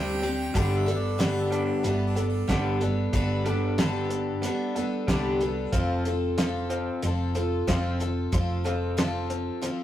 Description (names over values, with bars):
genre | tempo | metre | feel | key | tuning
folk rock and heartland rock | 92 BPM | 4/4 | straight | G mixolydian | A4 = 440 Hz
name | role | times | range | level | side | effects
bright harmonica | second line | 0.0-2.6 s | D4 to G5 | -37 LUFS | right 5 dB | none
picked twelve-string acoustic guitar | accompaniment | 0.0-9.8 s | G2 to A4 | -28 LUFS | left 2 dB | none
electric guitar through a small old amp | riff | 0.0-9.8 s | C3 to F4 | -33 LUFS | right 2 dB | warbly pitch drift
hollow-body short-scale fingered electric bass | bass | 0.0-9.5 s | F1 to D2 | -30 LUFS | right 1 dB | none
cloth-damped thuddy drum kit | drums | 0.2-9.8 s | hi-hat, kick drum, ride cymbal, snare drum | -29 LUFS | equal | none
room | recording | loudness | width
moderate studio ambience, RT60 0.5 s | rough rehearsal-room recording | -24 LUFS | side -12 dB against mid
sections
0.5-9.8 A section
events
none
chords
0.0 Csus2; 0.5 Gadd9; 5.7 F